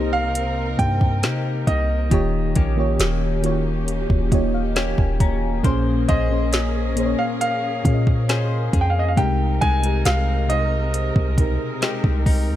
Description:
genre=contemporary R&B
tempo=68 BPM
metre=4/4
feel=straight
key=Ab major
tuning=A4 = 441 Hz
part: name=warm grand piano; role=melody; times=0.0-12.2 s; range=Eb5 to Ab5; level=-26 LUFS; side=right 2 dB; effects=none
part: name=mellow FM electric piano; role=accompaniment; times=0.0-12.6 s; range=Bb2 to Bb5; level=-25 LUFS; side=left 1 dB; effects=chorus, phaser
part: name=warm studio string section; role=sustained chords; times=0.0-12.6 s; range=C3 to Bb4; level=-31 LUFS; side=right 1 dB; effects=none
part: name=direct-recorded clean electric guitar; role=arpeggios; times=0.0-12.6 s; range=C3 to C5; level=-29 LUFS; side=left 7 dB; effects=analog chorus, ping-pong delay
part: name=warm 808-style bass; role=bass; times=0.0-12.6 s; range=Eb1 to C3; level=-22 LUFS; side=equal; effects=none
part: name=smooth R&B drum kit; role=drums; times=0.4-12.5 s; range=hi-hat, kick drum, snare drum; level=-21 LUFS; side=equal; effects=none
room=digital ambience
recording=none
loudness=-18 LUFS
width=side -12 dB against mid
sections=0.0-12.6 A section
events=FM electric piano fill 3.9-5.6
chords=0.0 Cm7; 2.1 Eb7; 5.6 Bbm9; 9.2 Abmaj7/C

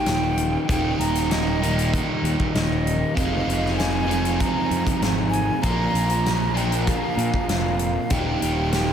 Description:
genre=rock, shoegaze and dream pop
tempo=97 BPM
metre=4/4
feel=straight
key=Eb major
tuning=A4 = 440 Hz
part: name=breathy jazz flute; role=melody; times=0.0-8.9 s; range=Eb5 to Bb5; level=-27 LUFS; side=equal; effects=diffuse ambient delay
part: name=overdriven semi-hollow guitar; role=riff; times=0.0-8.9 s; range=Eb2 to F4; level=-24 LUFS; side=right 1 dB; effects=lush chorus
part: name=fuzz picked electric bass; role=bass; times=0.1-8.9 s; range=Eb1 to Bb2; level=-25 LUFS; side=equal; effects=overdrive
part: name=huge arena drum kit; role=drums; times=0.1-8.9 s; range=hi-hat, kick drum, snare drum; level=-27 LUFS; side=left 1 dB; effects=none
room=moderate huge ambient reverb, RT60 8.8 s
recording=dreamy mix soaked in reverb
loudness=-20 LUFS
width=side -8 dB against mid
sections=0.0-8.9 A section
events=none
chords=0.0 Eb; 3.2 Fm7; 5.6 Bb; 8.1 Eb

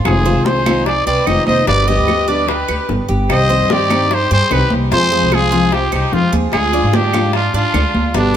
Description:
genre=latin, Cuban son and guajira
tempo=148 BPM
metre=4/4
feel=straight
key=unclear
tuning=A4 = 440 Hz
part: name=clear studio violin section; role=second line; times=0.0-8.4 s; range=B3 to C5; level=-23 LUFS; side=right 1 dB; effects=none
part: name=nylon-string guitar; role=accompaniment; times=0.0-8.3 s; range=B2 to G4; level=-20 LUFS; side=left 3 dB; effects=none
part: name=Cuban tres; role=arpeggios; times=0.0-8.4 s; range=B3 to D5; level=-23 LUFS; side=right 3 dB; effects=none
part: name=upright bass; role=bass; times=0.0-8.4 s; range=F1 to Ab2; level=-18 LUFS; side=equal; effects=none
part: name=growling trumpet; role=melody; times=0.1-8.4 s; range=D4 to Eb5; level=-17 LUFS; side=equal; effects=none
part: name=bongos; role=percussion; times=0.1-8.4 s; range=none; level=-25 LUFS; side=left 7 dB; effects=none
part: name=claves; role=percussion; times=0.1-7.9 s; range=none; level=-28 LUFS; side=right 12 dB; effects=none
part: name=congas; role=percussion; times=0.1-8.3 s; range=none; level=-23 LUFS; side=equal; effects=none
room=moderate plate reverb, RT60 3.2 s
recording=none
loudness=-12 LUFS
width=side -9 dB against mid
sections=0.0-8.4 A section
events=none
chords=0.1 Fm7; 1.7 G; 3.3 Cm; 4.9 Fm; 6.5 Ddim

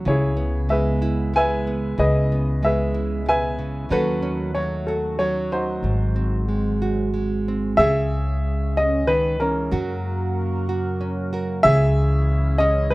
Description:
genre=acoustic folk-pop ballad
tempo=93 BPM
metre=3/4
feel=straight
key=C# minor, C# dorian from 7.8 s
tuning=A4 = 440 Hz
part: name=nylon-string guitar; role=accompaniment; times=0.0-12.9 s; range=G#2 to A#4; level=-25 LUFS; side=right 2 dB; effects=none
part: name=phased analog pad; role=sustained chords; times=0.0-12.9 s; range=C#3 to A#4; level=-32 LUFS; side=equal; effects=phaser, chorus
part: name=upright bass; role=bass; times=0.0-12.9 s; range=G#1 to F#2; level=-24 LUFS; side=equal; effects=none
part: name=warm upright piano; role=melody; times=0.1-12.9 s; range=C#4 to G#5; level=-22 LUFS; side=equal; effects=none
room=light reverb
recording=rough home demo mix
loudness=-19 LUFS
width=side -20 dB against mid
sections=0.0-7.8 A section; 7.8-12.9 B section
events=none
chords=0.1 C#m7; 3.9 D#m7b5; 5.8 G#7; 7.8 C#madd9; 9.7 F#; 11.6 C#m

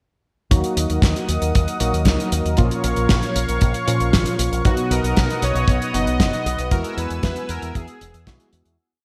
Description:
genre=italo disco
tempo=116 BPM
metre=4/4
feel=straight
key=Eb minor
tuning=A4 = 442 Hz
part: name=warm analog pad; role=sustained chords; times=0.5-8.8 s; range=B3 to E6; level=-29 LUFS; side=equal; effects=chorus
part: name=barky tine electric piano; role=stabs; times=0.5-8.8 s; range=Bb2 to Gb4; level=-28 LUFS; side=equal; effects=ensemble chorus, delay
part: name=fingered electric bass with an envelope filter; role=bass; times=0.5-8.8 s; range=E1 to Bb2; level=-26 LUFS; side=equal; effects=none
part: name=damped 70s drum kit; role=drums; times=0.5-8.8 s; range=hi-hat, snare drum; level=-26 LUFS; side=equal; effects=studio reverb, gated reverb
part: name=kick drum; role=drums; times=0.5-8.4 s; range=none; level=-20 LUFS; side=equal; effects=studio reverb
part: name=analog synth brass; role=melody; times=4.6-8.5 s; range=F#4 to D#5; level=-29 LUFS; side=equal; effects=chorus, digital delay
room=light reverb, small room ambience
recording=bright 1980s-style digital production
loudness=-20 LUFS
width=mono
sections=0.5-8.8 verse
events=fade-out 6.0-8.8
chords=0.5 Ebm; 2.6 Bbm; 4.6 B; 6.7 Eadd9

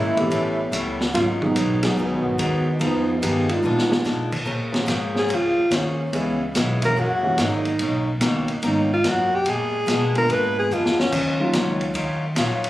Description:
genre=jazz, big band swing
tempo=144 BPM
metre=4/4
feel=swing 66% on 8ths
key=Bb minor from 4.5 s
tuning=A4 = 438 Hz
part: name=dark trombone section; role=second line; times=0.0-4.3 s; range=Eb3 to G4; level=-23 LUFS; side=right 1 dB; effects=none
part: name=picked swing-style acoustic guitar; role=accompaniment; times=0.0-12.7 s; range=Ab2 to C5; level=-28 LUFS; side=left 2 dB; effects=none
part: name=upright bass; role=bass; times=0.0-12.7 s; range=Gb1 to Cb3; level=-27 LUFS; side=equal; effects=none
part: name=warm concert grand piano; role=accompaniment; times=0.2-11.9 s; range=D3 to Ab4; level=-26 LUFS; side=equal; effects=none
part: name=vintage drum kit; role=drums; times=0.2-12.7 s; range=crash cymbal, hi-hat, kick drum, ride cymbal, snare drum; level=-27 LUFS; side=equal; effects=none
part: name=warm alto saxophone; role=melody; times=5.2-11.4 s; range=Db4 to Cb5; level=-21 LUFS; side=equal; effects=none
room=light reverb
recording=recorded on a phone in the room, club reverb, compression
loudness=-19 LUFS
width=side -15 dB against mid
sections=0.0-4.5 A section; 4.5-12.7 B section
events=trombone section solo 0.0-4.5; drum fill 3.6-4.1, 10.7-11.1; alto saxophone solo 4.5-12.7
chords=0.3 A9; 1.1 Abm7; 2.8 Fm7b5; 3.6 Bb7b9; 4.5 Bbm9; 6.1 Dbm7; 7.0 Gb9; 7.8 Bmaj9; 9.5 Bb7b9; 11.1 Ebm9

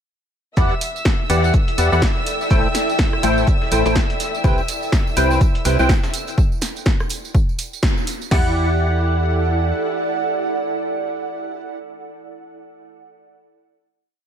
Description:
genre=piano house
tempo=124 BPM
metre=4/4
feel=swing 59% on 16ths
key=E minor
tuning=A4 = 440 Hz
part: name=dark studio violin section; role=sustained chords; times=0.6-6.4 s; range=E5 to E6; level=-27 LUFS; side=equal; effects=sidechain pumping
part: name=percussive organ stab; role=riff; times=0.6-11.8 s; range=C3 to G5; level=-21 LUFS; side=equal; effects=ensemble chorus, sidechain pumping, ping-pong delay
part: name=organ-like FM bass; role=bass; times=0.6-9.7 s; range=A1 to E2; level=-20 LUFS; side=equal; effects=sidechain pumping
part: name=dusty soul sampler-style drum kit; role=drums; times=0.6-6.4 s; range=hi-hat, shaker, snare drum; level=-35 LUFS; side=equal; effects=none
part: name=punchy analog drum machine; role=drums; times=0.6-8.4 s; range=crash cymbal, kick drum, snare drum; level=-18 LUFS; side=equal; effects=none
part: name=punchy analog drum machine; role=drums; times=0.6-8.3 s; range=hi-hat, rim click, snare drum, tambourine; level=-25 LUFS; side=equal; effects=none
part: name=ethereal airy pad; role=texture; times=1.7-12.0 s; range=E4 to G5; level=-26 LUFS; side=right 3 dB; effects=ensemble chorus, built-in reverb, sidechain pumping
part: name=tambourine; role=percussion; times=4.4-8.3 s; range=none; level=-38 LUFS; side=right 12 dB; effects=none
room=light reverb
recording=none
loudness=-16 LUFS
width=side -8 dB against mid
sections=0.6-8.3 drop; 8.3-12.2 final chord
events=drop 0.6-8.3; band accent 7.8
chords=0.6 Em9; 2.3 Am7; 4.4 Cmaj7; 6.1 D; 8.3 Em9

